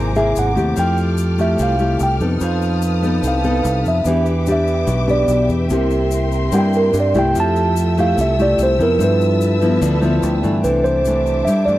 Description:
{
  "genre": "bossa nova",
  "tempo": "146 BPM",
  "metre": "4/4",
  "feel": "straight",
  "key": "C major",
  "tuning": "A4 = 440 Hz",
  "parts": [
    { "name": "nylon-string guitar", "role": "accompaniment", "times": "0.0-11.8 s", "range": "G2 to A4", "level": "-19 LUFS", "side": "left 2 dB", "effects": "none" },
    { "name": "vibraphone with soft mallets", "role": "accompaniment", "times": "0.0-11.8 s", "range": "C4 to F6", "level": "-26 LUFS", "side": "right 6 dB", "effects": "none" },
    { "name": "warm symphonic string section", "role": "sustained chords", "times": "0.0-11.8 s", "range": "A4 to F6", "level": "-28 LUFS", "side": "equal", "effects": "none" },
    { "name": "fingered electric bass", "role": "bass", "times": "0.0-11.8 s", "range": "G#1 to G2", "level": "-19 LUFS", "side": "equal", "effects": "none" },
    { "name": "mellow tine electric piano", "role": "melody", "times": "0.2-11.8 s", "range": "Bb4 to A5", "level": "-19 LUFS", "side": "right 2 dB", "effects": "none" },
    { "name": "egg shaker", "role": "percussion", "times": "0.2-11.8 s", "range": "none", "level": "-37 LUFS", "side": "left 13 dB", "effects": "none" }
  ],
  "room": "light reverb",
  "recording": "dry, close 1970s-style studio recording",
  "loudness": "-14 LUFS",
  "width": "side -15 dB against mid",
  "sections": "0.0-10.6 A section; 10.6-11.8 B section",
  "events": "tine electric piano solo 0.0-10.6; vibraphone fill 9.8-10.6",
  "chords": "0.0 C7alt; 0.8 Fmaj9; 2.4 F7#11; 4.1 Em7; 5.7 C7; 7.4 Fmaj9; 9.0 G13; 10.6 C69"
}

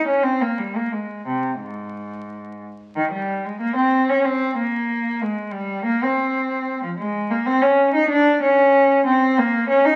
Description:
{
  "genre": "classical, baroque-style suite movement for unaccompanied cello",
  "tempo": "87-96 BPM",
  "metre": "3/4",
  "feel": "rubato",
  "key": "Ab major",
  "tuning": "A4 = 440 Hz",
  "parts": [
    { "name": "rich cello", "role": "solo", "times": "0.0-10.0 s", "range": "Ab2 to Eb4", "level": "-20 LUFS", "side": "equal", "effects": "none" }
  ],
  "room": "wet stone room reverb, RT60 1.0 s",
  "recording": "very old 78 rpm record, vinyl crackle",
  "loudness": "-20 LUFS",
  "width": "mono",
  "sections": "0.0-3.0 A section; 3.0-10.0 B section",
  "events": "none",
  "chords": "none"
}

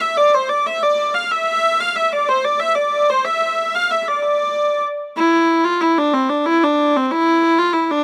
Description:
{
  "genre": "medieval",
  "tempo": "124 BPM (dotted quarters)",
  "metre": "6/8",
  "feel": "straight",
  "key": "D minor",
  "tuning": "A4 = 441 Hz",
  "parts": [
    { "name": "clear hurdy-gurdy", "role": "solo", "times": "0.0-8.0 s", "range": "C4 to F5", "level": "-17 LUFS", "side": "equal", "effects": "none" }
  ],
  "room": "light reverb",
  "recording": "recorded outdoors, with no room sound",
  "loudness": "-17 LUFS",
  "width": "mono",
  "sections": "0.0-5.2 A section; 5.2-8.0 A section",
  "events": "none",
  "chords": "none"
}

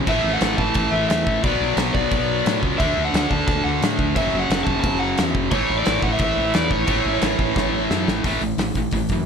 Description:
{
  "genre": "punk rock",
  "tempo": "176 BPM",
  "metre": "4/4",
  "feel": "straight",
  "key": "A major",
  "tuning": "A4 = 437 Hz",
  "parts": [
    { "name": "distorted electric guitar", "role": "riff", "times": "0.0-9.3 s", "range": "F#2 to D4", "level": "-22 LUFS", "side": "left 1 dB", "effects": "overdrive" },
    { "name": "woody fretless electric bass", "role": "bass", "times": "0.0-9.3 s", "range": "F#1 to A2", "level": "-26 LUFS", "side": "equal", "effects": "none" },
    { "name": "overdriven semi-hollow guitar", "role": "melody", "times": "0.1-7.9 s", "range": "C#5 to A5", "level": "-24 LUFS", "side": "equal", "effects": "none" },
    { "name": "loose indie drum kit", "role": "drums", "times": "0.1-9.2 s", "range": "crash cymbal, hi-hat, kick drum, snare drum", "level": "-24 LUFS", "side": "equal", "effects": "none" }
  ],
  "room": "little or no reverb",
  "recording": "none",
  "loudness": "-18 LUFS",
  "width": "side -6 dB against mid",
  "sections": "0.0-8.2 A section; 8.2-9.3 B section",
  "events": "drum fill 7.6-8.2",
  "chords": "0.1 A5; 1.4 Bm; 2.8 D5; 4.2 F#5; 5.5 A5; 6.9 A"
}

